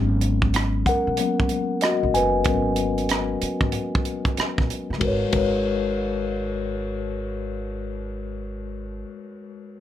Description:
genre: R&B, neo-soul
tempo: 94 BPM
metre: 4/4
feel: swing 64% on 16ths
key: G# minor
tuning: A4 = 440 Hz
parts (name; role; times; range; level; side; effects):
- mellow tine electric piano; accompaniment; 0.0-9.8 s; F#3 to G#5; -24 LUFS; left 3 dB; slow stereo tremolo, plate reverb
- upright bass; bass; 0.0-9.0 s; F#1 to B1; -28 LUFS; right 1 dB; none
- tight funk drum kit; drums; 0.2-5.5 s; hi-hat, kick drum, ride cymbal, rim click; -26 LUFS; right 1 dB; none
room: light reverb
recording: none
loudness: -21 LUFS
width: side -11 dB against mid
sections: 0.0-5.0 A section; 5.0-7.6 B section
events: tine electric piano solo 0.0-5.0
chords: 0.0 G#m11

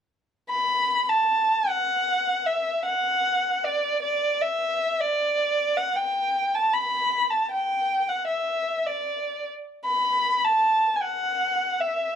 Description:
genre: folk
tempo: 77 BPM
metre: 3/4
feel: straight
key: B minor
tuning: A4 = 440 Hz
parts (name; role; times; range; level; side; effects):
- dark violin; melody; 0.5-12.2 s; D5 to B5; -22 LUFS; equal; none
room: light reverb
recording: dark, warm production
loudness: -22 LUFS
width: side -8 dB against mid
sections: 0.5-12.2 A section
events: none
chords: none

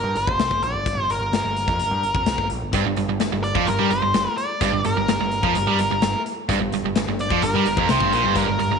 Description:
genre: classic rock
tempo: 128 BPM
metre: 4/4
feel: straight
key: G minor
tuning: A4 = 441 Hz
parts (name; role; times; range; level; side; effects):
- octave-fuzz lead guitar; melody; 0.0-8.8 s; Bb4 to D5; -23 LUFS; equal; distortion, slapback echo
- growling picked electric bass; bass; 0.0-8.8 s; F1 to G2; -28 LUFS; right 1 dB; overdrive
- big rock drum kit; drums; 0.2-8.7 s; hi-hat, kick drum, snare drum; -26 LUFS; left 4 dB; none
- overdriven semi-hollow guitar; riff; 2.7-8.8 s; F2 to G3; -27 LUFS; left 10 dB; spring reverb
- tight distorted guitar; riff; 2.7-8.8 s; F2 to G3; -23 LUFS; right 13 dB; distortion
room: light reverb, small room ambience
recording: 1960s-style stereo with parts hard left and right, nothing above 10.7 kHz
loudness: -19 LUFS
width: side -6 dB against mid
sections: 0.0-8.8 A section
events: none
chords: 0.0 Gm

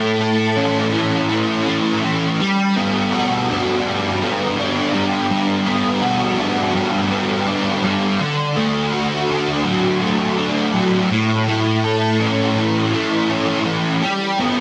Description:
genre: rock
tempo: 83 BPM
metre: 4/4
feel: straight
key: G lydian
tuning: A4 = 440 Hz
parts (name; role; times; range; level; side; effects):
- fuzz guitar; solo; 0.0-14.6 s; A2 to A4; -18 LUFS; equal; distortion, ensemble chorus, analog delay
room: moderate recital hall reverb, RT60 1.3 s, digital ambience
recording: dense, heavily limited modern master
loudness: -18 LUFS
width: mono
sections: 0.0-14.6 A section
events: none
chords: 0.0 A; 2.4 Gmaj7; 8.2 D; 11.1 A; 14.0 G

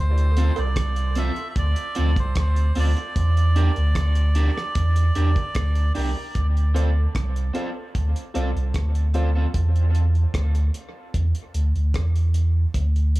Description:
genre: dub reggae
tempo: 75 BPM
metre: 4/4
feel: straight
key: D minor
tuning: A4 = 442 Hz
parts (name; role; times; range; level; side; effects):
- melodica; melody; 0.0-5.9 s; C5 to E5; -31 LUFS; right 1 dB; dub echo
- warm sub bass; bass; 0.0-13.2 s; C2 to E2; -19 LUFS; equal; none
- cloth-damped thuddy drum kit; drums; 0.2-13.2 s; hi-hat, kick drum, rim click; -28 LUFS; equal; none
- electric guitar at the edge of break-up; accompaniment; 0.4-9.5 s; C4 to Bb4; -32 LUFS; right 2 dB; dub echo
- cowbell; percussion; 0.6-0.7 s; none; -38 LUFS; right 7 dB; dub echo
- dark baby grand piano; stabs; 6.7-9.4 s; F4 to D5; -37 LUFS; left 3 dB; dub echo
room: small room ambience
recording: echo-heavy mix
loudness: -19 LUFS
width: side -18 dB against mid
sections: 0.0-6.4 A section; 6.4-13.2 B section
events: break 0.0-6.4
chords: 0.0 Dm7; 3.2 Em7b5; 6.4 Dm7; 9.5 Dsus2

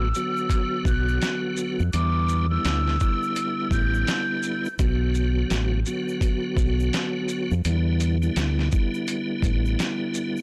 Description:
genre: hip hop, boom-bap hip-hop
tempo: 84 BPM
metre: 4/4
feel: swing 62% on 16ths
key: B minor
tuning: A4 = 440 Hz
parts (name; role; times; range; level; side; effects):
- breathy silver concert flute; melody; 0.0-4.8 s; D6 to G6; -31 LUFS; equal; high-pass filter, low-pass filter, tape echo
- tonewheel organ; accompaniment; 0.0-10.4 s; D3 to F#4; -30 LUFS; equal; overdrive, chorus vibrato, fast rotary speaker, high-pass filter, low-pass filter
- deep dub fingered electric bass; bass; 0.0-9.7 s; A1 to E#2; -26 LUFS; equal; transformer saturation
- dusty soul sampler-style drum kit; drums; 0.1-10.4 s; hi-hat, kick drum, shaker, snare drum; -28 LUFS; equal; none
- egg shaker; percussion; 0.1-10.4 s; none; -51 LUFS; equal; none
room: little or no reverb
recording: blown-out, overdriven recording, overdrive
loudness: -24 LUFS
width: mono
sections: 0.0-10.4 A section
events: none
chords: 0.0 Bm; 1.9 Em7; 4.8 Bm; 7.6 Em7

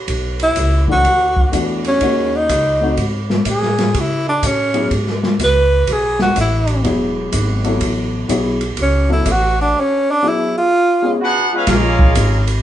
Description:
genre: jazz, big band swing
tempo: 124 BPM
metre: 4/4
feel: swing 66% on 8ths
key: unclear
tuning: A4 = 438 Hz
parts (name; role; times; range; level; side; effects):
- upright bass; bass; 0.1-12.6 s; E1 to C#3; -19 LUFS; equal; none
- open jazz drum kit; drums; 0.1-12.5 s; hi-hat, kick drum, ride cymbal, snare drum; -20 LUFS; equal; none
- clear tenor saxophone; melody; 0.4-11.2 s; C#4 to B4; -16 LUFS; right 1 dB; none
- warm upright piano; accompaniment; 0.9-11.2 s; D#3 to A4; -20 LUFS; left 3 dB; none
- bright trumpet section; melody; 11.2-12.5 s; Db4 to F#5; -17 LUFS; right 1 dB; none
- clear trombone section; second line; 11.2-12.4 s; G#3 to F#4; -22 LUFS; right 1 dB; none
- mellow saxophone section; sustained chords; 11.7-12.4 s; Db3 to F4; -28 LUFS; left 1 dB; none
room: moderate large studio reverb, RT60 0.9 s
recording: band playing live in one room, nothing above 10.4 kHz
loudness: -13 LUFS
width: side -12 dB against mid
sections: 0.0-11.7 A section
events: tenor saxophone solo 0.0-11.7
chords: 0.1 Bm9; 2.0 D#m7b5; 3.0 N.C.; 3.9 C#7(no3); 5.9 F#m11 (rootless); 6.8 E; 7.8 Amaj7; 9.7 E6; 10.7 C#7; 11.7 Bbm7

